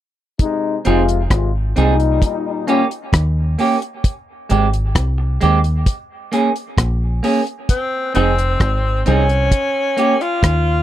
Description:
roots reggae; 66 BPM; 4/4; straight; F minor; A4 = 439 Hz
muted trombone section; second line; 0.4-2.8 s; Bb2 to F4; -20 LUFS; left 6 dB; dub echo
deep reggae drum kit; drums; 0.4-10.7 s; hi-hat, kick drum, rim click; -17 LUFS; equal
semi-hollow electric guitar; accompaniment; 0.8-10.1 s; Ab3 to Ab4; -20 LUFS; right 4 dB; dub echo
deep dub fingered electric bass; bass; 0.9-10.8 s; F1 to Eb2; -16 LUFS; equal
clear tenor saxophone; melody; 7.7-10.8 s; C4 to F4; -18 LUFS; left 1 dB; dub echo
little or no reverb; dry, close 1970s-style studio recording; -15 LUFS; side -12 dB against mid
0.4-7.7 A section; 7.7-10.8 B section
0.4 Fm7; 2.2 Eb7; 4.0 Abmaj7; 5.9 Bbm7; 7.7 Fm7; 9.5 Eb7
| 0.39 1.30 2.22 3.13 | 4.04 4.95 5.86 6.78 | 7.69 8.60 9.51 10.43

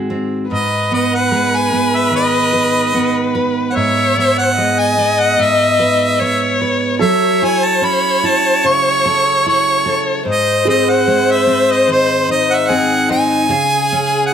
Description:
acoustic folk-pop ballad; 74 BPM; 4/4; straight; A4 = 440 Hz
fingerpicked steel-string acoustic guitar; accompaniment; 0.0-14.3 s; G#2 to B#4; -18 LUFS; right 1 dB
bright harmonica; melody; 0.5-14.3 s; B#4 to C#6; -16 LUFS; right 2 dB
rich violin; second line; 0.5-14.3 s; D#4 to D#5; -16 LUFS; left 3 dB
felt-muted upright piano; arpeggios; 7.0-12.6 s; G#4 to A4; -20 LUFS; right 3 dB
moderate large studio reverb, RT60 1.2 s; -12 LUFS; side -8 dB against mid
0.5-13.5 A section
0.0 G#7; 0.5 G#m; 3.8 C#m7/G#; 7.0 F#m7; 10.2 G#; 13.5 C#5
| 0.50 1.31 2.13 2.94 | 3.75 4.57 5.38 6.19 | 7.00 7.81 8.62 9.43 | 10.25 11.06 11.88 12.69 | 13.51 14.32

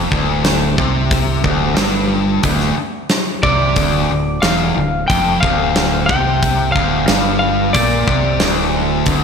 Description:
hard rock; 91 BPM; 4/4; straight; D minor; A4 = 440 Hz
sludgy distorted guitar; riff; 0.0-9.2 s; D2 to C3; -20 LUFS; right 9 dB; overdrive
tight distorted guitar; riff; 0.0-9.2 s; D2 to C3; -20 LUFS; left 9 dB; distortion
growling fingered electric bass; bass; 0.0-9.2 s; D1 to C2; -22 LUFS; equal; overdrive
big rock drum kit; drums; 0.1-9.2 s; hi-hat, kick drum, snare drum; -18 LUFS; left 1 dB; gated reverb
lightly driven lead guitar; melody; 3.4-8.7 s; D5 to G5; -18 LUFS; left 1 dB; digital delay
moderate lush hall reverb, RT60 1.9 s, small room ambience; bright 1980s-style digital production; -13 LUFS; side -6 dB against mid
0.0-9.2 A section
0.0 Dm
0.46 | 1.12 1.78 2.45 3.11 | 3.77 4.44 5.10 5.76 | 6.42 7.09 7.75 8.41 | 9.07

